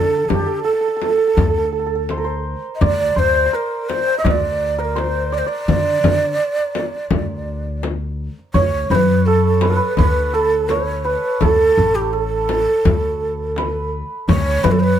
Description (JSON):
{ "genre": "Persian modal ensemble", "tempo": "84 BPM", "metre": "4/4", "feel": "straight", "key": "D dastgah homayun", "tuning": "A4 = 440 Hz", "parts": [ { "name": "breathy mellow ney", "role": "melody", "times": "0.0-15.0 s", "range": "G4 to Eb5+44c", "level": "-18 LUFS", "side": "right 1 dB", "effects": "none" }, { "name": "santur", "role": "second line", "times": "0.0-15.0 s", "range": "A4 to Eb5+45c", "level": "-24 LUFS", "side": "right 6 dB", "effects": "none" }, { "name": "upright bass", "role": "bass", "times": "0.0-15.0 s", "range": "A1 to D3", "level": "-20 LUFS", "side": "left 1 dB", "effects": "none" }, { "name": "tombak", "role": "percussion", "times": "0.2-14.8 s", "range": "none", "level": "-24 LUFS", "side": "right 2 dB", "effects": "none" }, { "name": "frame drum", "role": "percussion", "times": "0.3-14.8 s", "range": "none", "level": "-22 LUFS", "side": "left 6 dB", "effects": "none" } ], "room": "light reverb", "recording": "none", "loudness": "-15 LUFS", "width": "side -10 dB against mid", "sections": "0.0-8.6 A section; 8.6-15.0 B section", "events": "none", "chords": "none" }